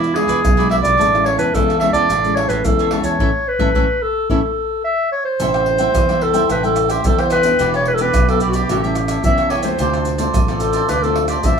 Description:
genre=samba and choro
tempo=109 BPM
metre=4/4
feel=straight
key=A major, A minor from 5.4 s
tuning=A4 = 442 Hz
part: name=clear clarinet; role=melody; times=0.0-11.6 s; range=E4 to E5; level=-17 LUFS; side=equal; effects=none
part: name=cavaquinho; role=accompaniment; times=0.0-11.6 s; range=E4 to A5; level=-23 LUFS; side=right 3 dB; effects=none
part: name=nylon-string guitar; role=accompaniment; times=0.0-11.6 s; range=A2 to G4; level=-23 LUFS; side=left 2 dB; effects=none
part: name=modern bright fingered electric bass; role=bass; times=0.0-11.6 s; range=E1 to E2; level=-22 LUFS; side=right 1 dB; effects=none
part: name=maracas, pandeiro, tamborim, surdo and agogo bells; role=percussion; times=0.0-11.6 s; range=none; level=-21 LUFS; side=right 1 dB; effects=none
room=moderate small room reverb, RT60 0.5 s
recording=band playing live in one room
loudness=-14 LUFS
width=side -6 dB against mid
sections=0.0-5.4 A section; 5.4-11.6 B section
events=band accent 3.2-5.4; drum fill 4.3-5.4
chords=0.0 E7b9; 1.0 Amaj7; 5.4 Am7; 7.6 Em7; 8.7 A7; 9.8 Dm7

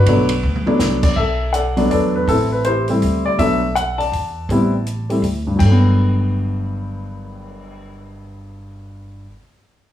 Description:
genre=jazz piano trio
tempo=163 BPM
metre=3/4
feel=swing 63% on 8ths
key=G major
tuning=A4 = 442 Hz
part: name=warm grand piano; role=melody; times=0.0-9.4 s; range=G2 to A5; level=-18 LUFS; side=left 1 dB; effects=none
part: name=upright bass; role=bass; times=0.0-9.3 s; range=G1 to E2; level=-20 LUFS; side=equal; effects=none
part: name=compact cocktail drum kit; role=drums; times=0.1-7.7 s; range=crash cymbal, cymbal swell, hi-hat, kick drum, ride cymbal, snare drum, toms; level=-24 LUFS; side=right 1 dB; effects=none
room=light reverb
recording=small room ambience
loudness=-15 LUFS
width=side -11 dB against mid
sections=0.0-1.2 A section; 1.2-5.6 B section; 5.6-7.8 C section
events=drum fill 0.4-0.8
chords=0.0 Gmaj9 (rootless); 1.2 Bm7; 1.9 E7sus4; 2.3 Am7; 3.0 D9sus4; 3.4 Bm7; 4.1 E7sus4; 4.5 Am9; 5.2 N.C.; 5.6 Gmaj9

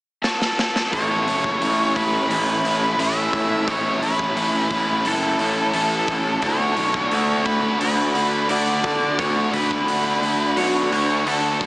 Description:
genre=rock, shoegaze and dream pop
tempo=87 BPM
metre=4/4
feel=straight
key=A major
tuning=A4 = 440 Hz
part: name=octave-fuzz lead guitar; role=melody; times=0.2-11.7 s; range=A4 to E5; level=-22 LUFS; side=equal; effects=distortion, tape echo
part: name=raw garage drum kit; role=drums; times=0.2-11.7 s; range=hi-hat, kick drum, snare drum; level=-28 LUFS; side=equal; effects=none
part: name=biting overdriven guitar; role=riff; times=0.9-11.7 s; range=A2 to F#4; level=-23 LUFS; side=equal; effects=wide subtle chorus
part: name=fuzz picked electric bass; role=bass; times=0.9-11.7 s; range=F#1 to D3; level=-24 LUFS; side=equal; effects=overdrive
room=wet huge ambient reverb, RT60 6.8 s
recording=dreamy mix soaked in reverb, small speaker sound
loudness=-18 LUFS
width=side -22 dB against mid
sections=0.9-11.7 A section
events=drum fill 0.2-0.9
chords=0.0 N.C.; 0.9 Aadd9; 6.4 D6

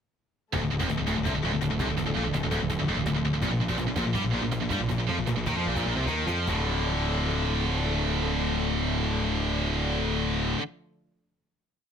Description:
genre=heavy metal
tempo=141-167 BPM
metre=4/4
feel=straight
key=D phrygian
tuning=A4 = 438 Hz
part: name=dark chamber string section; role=sustained chords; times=0.5-10.5 s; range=D3 to A4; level=-38 LUFS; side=equal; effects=none
part: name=distorted electric guitar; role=riff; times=0.5-10.6 s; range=D2 to G3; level=-32 LUFS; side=equal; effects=overdrive
part: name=heavy high-gain guitar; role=riff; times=0.5-10.6 s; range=D2 to G3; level=-31 LUFS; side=left 10 dB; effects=distortion
part: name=heavy high-gain guitar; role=riff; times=0.5-10.6 s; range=D2 to G3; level=-31 LUFS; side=right 11 dB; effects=distortion
part: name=fuzz picked electric bass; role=bass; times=0.5-10.5 s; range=D1 to G2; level=-30 LUFS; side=equal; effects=overdrive
part: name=cajon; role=drums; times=0.5-6.6 s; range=none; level=-37 LUFS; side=equal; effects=none
room=light reverb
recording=dense, heavily limited modern master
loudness=-25 LUFS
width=side -8 dB against mid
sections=0.5-6.5 riff; 6.5-9.9 final chord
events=slowing down 3.4-6.5; drum fill 6.1-6.5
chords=0.5 Dm; 3.4 Bb5; 6.5 Dm

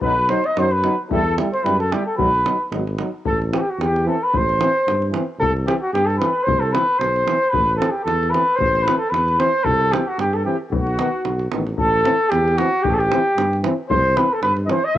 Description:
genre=balkan folk, Balkan brass band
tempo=112 BPM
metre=2/4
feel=swing 54% on 16ths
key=unclear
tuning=A4 = 444 Hz
part: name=mellow flugelhorn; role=melody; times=0.0-15.0 s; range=F#4 to D#5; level=-19 LUFS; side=right 1 dB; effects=none
part: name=mellow trumpet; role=second line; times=0.0-15.0 s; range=F#4 to D#5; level=-28 LUFS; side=left 6 dB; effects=cassette tape
part: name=clear euphonium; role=accompaniment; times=0.0-14.8 s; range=D#3 to G3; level=-27 LUFS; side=right 5 dB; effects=cassette tape
part: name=mellow trombone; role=accompaniment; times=0.0-14.8 s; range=B3 to E4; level=-28 LUFS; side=left 7 dB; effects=cassette tape
part: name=mellow tuba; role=bass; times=0.0-15.0 s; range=G#1 to G2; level=-23 LUFS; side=equal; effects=none
part: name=davul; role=percussion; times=0.0-15.0 s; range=none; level=-26 LUFS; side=right 1 dB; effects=none
room=light reverb, small room ambience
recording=home recording on cassette, nothing above 10.5 kHz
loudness=-16 LUFS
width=side -13 dB against mid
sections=0.0-3.2 A section; 3.2-11.8 B section; 11.8-15.0 B section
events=none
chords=0.0 B; 1.1 Em; 2.2 B; 3.2 Am; 5.4 C; 7.5 Am; 9.7 C; 10.7 B; 11.8 Am; 13.9 C

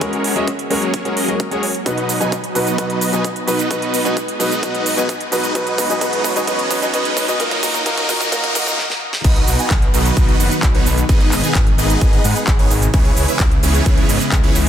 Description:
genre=EDM, festival progressive house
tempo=130 BPM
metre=4/4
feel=straight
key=B major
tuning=A4 = 440 Hz
part: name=warm grand piano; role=accompaniment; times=0.0-8.8 s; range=A#2 to D#5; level=-21 LUFS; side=left 1 dB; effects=sidechain pumping, tape echo
part: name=lush unison pad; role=sustained chords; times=0.0-14.7 s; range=B2 to D#5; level=-25 LUFS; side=equal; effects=chorus, phaser, sidechain pumping
part: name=supersaw chords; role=riff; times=0.0-14.6 s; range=A#3 to G#5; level=-20 LUFS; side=right 1 dB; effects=phaser, sidechain pumping, low-pass filter, tape echo
part: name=big-room dance drum kit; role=drums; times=0.0-14.7 s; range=crash cymbal, handclaps, hi-hat, shaker, snare drum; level=-23 LUFS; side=right 2 dB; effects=studio reverb
part: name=electronic kick drum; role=drums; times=0.0-14.4 s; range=none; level=-16 LUFS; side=equal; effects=high-pass filter on kick, studio reverb
part: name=riser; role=sound effects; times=4.3-8.8 s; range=none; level=-28 LUFS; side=equal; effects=none
part: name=wide detuned saw bass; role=bass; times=9.2-14.7 s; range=F#1 to G#2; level=-19 LUFS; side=equal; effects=chorus, sidechain pumping
room=light reverb, digital ambience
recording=dense, heavily limited modern master, high-pass filter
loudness=-14 LUFS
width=side -10 dB against mid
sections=0.0-9.2 A section; 9.2-14.7 B section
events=build-up 0.0-9.2; filter sweep on supersaw synth 0.0-9.2; filter sweep on analog synth pad 0.0-9.2; filter sweep 0.0-9.2; drum fill 1.9-8.8, 8.8-9.2; riser 4.3-8.8; stop 8.8-9.2; drop 9.2-14.7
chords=0.0 F#add9; 1.9 B; 5.6 C#m7; 7.4 F#add9; 9.2 B; 11.1 G#m; 12.9 C#m7

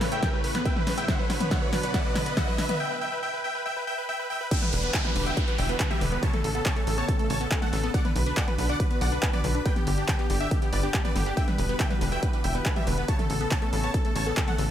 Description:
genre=uplifting trance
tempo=140 BPM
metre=4/4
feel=straight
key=E dorian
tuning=A4 = 440 Hz
part: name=big supersaw lead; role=melody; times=0.0-14.7 s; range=G4 to A5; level=-31 LUFS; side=equal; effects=sidechain pumping, low-pass filter, ping-pong delay
part: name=plucky unison lead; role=second line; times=0.0-14.7 s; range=G4 to A5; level=-36 LUFS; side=equal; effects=cassette tape, sidechain pumping
part: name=analog string pad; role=sustained chords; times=0.0-14.7 s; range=A2 to F#5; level=-37 LUFS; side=right 1 dB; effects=ensemble chorus, sidechain pumping
part: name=wide unison pluck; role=arpeggios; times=0.0-14.6 s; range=C#3 to D4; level=-33 LUFS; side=left 2 dB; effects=phaser, sidechain pumping, ping-pong delay
part: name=punchy analog drum machine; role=drums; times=0.0-14.7 s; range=crash cymbal, handclaps, hi-hat, snare drum, toms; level=-32 LUFS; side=equal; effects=overdrive
part: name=riser and downlifter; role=sound effects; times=0.0-7.9 s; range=none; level=-35 LUFS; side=right 1 dB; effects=none
part: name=electronic kick drum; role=drums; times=0.2-14.5 s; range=none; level=-27 LUFS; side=equal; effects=none
part: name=tight sequencer bass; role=bass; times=4.7-14.7 s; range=E1 to B1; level=-28 LUFS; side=equal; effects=tube saturation, sidechain pumping
room=light reverb, digital ambience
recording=none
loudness=-24 LUFS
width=side -10 dB against mid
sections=0.0-4.5 A section; 4.5-14.7 B section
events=build-up 0.0-4.5; drum fill 0.0-2.8; riser 0.0-2.8; break 2.8-4.5; drop 4.5-14.7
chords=0.0 Aadd9; 1.1 Bm; 2.8 Em/B; 4.5 Em7; 6.2 Aadd9; 7.9 Bm; 9.7 G; 11.4 Em7; 13.1 Aadd9

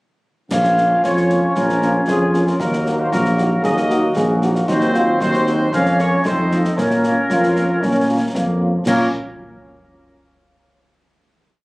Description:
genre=military-style march for wind band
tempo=115 BPM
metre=2/4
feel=straight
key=Bb minor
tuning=A4 = 440 Hz
part: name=dark trumpet section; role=melody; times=0.5-9.1 s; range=F4 to F5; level=-21 LUFS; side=equal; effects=none
part: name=mellow woodwind section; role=second line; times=0.5-9.1 s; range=F4 to Eb5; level=-25 LUFS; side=left 1 dB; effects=none
part: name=clear trombone section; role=sustained chords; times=0.5-9.1 s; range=F3 to F4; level=-22 LUFS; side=equal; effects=none
part: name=mellow tuba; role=bass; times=0.5-9.1 s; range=Bb1 to Bb2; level=-19 LUFS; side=equal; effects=none
part: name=concert snare drum, clash cymbals and concert bass drum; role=drums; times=0.5-9.2 s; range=none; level=-26 LUFS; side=equal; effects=none
part: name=warm French horn section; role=accompaniment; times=0.8-9.1 s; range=A3 to Gb4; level=-23 LUFS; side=equal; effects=none
part: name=warm euphonium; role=second line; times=1.0-8.6 s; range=C4 to Ab4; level=-23 LUFS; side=right 1 dB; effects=none
room=little or no reverb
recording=recorded on a phone in the room, club reverb, compression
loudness=-14 LUFS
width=side -23 dB against mid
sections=0.5-8.9 A section; 8.9-9.9 final chord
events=none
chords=0.5 Bbm; 2.6 Ebm; 4.7 Cdim/Eb; 5.7 Bbm/F; 6.3 F7; 6.8 Bbm

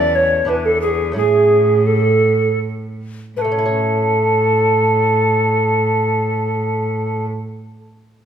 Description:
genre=classical, baroque-style sonata movement with continuo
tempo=77-94 BPM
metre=3/4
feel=straight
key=A major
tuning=A4 = 440 Hz
part: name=tenor recorder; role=melody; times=0.0-7.3 s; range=G#4 to D5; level=-18 LUFS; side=left 4 dB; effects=none
part: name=mellow baroque flute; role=second line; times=0.0-7.3 s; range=G#4 to A5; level=-18 LUFS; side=right 5 dB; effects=none
part: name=lute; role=accompaniment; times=0.0-7.5 s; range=E2 to C#5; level=-28 LUFS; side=equal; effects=none
part: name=rich cello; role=bass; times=0.0-7.3 s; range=E2 to A2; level=-21 LUFS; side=right 2 dB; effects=none
room=wet recital hall reverb, RT60 1.4 s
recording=minimal, uncompressed stereo recording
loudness=-14 LUFS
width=side -9 dB against mid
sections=0.0-3.4 A section; 3.4-8.0 B section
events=slowing down 0.0-3.4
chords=0.5 E7; 1.2 A

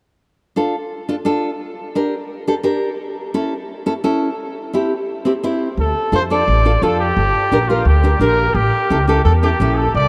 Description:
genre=latin, cumbia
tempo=172 BPM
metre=4/4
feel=straight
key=D minor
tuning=A4 = 440 Hz
part: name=nylon-string guitar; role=accompaniment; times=0.6-9.8 s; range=C4 to Bb4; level=-22 LUFS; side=equal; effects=none
part: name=warm trumpet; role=melody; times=5.8-10.1 s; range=F4 to D5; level=-19 LUFS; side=equal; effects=none
part: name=upright bass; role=bass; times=5.8-10.1 s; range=G1 to F2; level=-19 LUFS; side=equal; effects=none
room=wet huge ambient reverb, RT60 8.9 s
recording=in a vast, echoing space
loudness=-17 LUFS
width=mono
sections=0.2-5.8 A section; 5.8-10.1 B section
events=none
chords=0.2 Dm; 1.6 Gm; 3.0 A; 4.4 C; 5.8 Dm; 7.2 Gm; 8.6 A7

